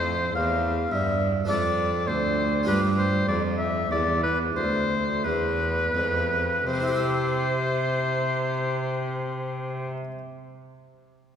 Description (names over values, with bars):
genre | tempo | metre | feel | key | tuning
classical, baroque-style sonata movement with continuo | 41-54 BPM | 3/4 | rubato | C major | A4 = 437 Hz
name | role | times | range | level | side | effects
clear oboe | melody | 0.0-9.9 s | B4 to F5 | -26 LUFS | left 2 dB | none
harpsichord | accompaniment | 0.0-10.2 s | D2 to E5 | -29 LUFS | right 1 dB | none
rich cello | bass | 0.0-9.9 s | D2 to C3 | -27 LUFS | right 1 dB | none
room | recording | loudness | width
wet church reverb, RT60 2.7 s | recorded in a church or concert hall | -23 LUFS | side -8 dB against mid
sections
0.0-6.7 A section; 6.7-10.9 B section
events
slowing down 0.0-6.7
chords
0.0 Am; 1.5 Dm7/F; 2.7 G7; 6.7 C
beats
0.35 1.50 | 2.68 3.91 5.24 | 6.67 8.08 9.49